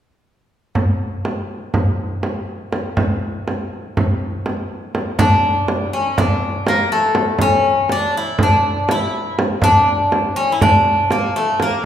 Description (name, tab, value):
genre	Turkish makam ensemble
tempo	244 BPM (eighths)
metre	9/8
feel	straight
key	unclear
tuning	A4 = 437 Hz
part	frame drum	percussion	0.8-11.7 s	none	-18 LUFS	right 1 dB	none
part	Greek bouzouki	melody	5.2-11.9 s	A3 to E4	-16 LUFS	left 1 dB	none
room	wet recital hall reverb, RT60 1.8 s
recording	recorded in a church or concert hall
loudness	-15 LUFS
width	side -10 dB against mid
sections	0.7-5.2 A section; 5.2-11.9 B section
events	none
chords	none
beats	| 0.75 1.00 1.24 1.49 1.74 1.98 2.23 2.48 2.73 | 2.97 3.22 3.47 3.71 3.96 4.21 4.45 4.70 4.95 | 5.20 5.44 5.69 5.93 6.18 6.43 6.67 6.92 7.17 | 7.41 7.66 7.91 8.15 8.40 8.64 8.89 9.14 9.38 | 9.63 9.87 10.12 10.37 10.61 10.86 11.10 11.35 11.59 | 11.84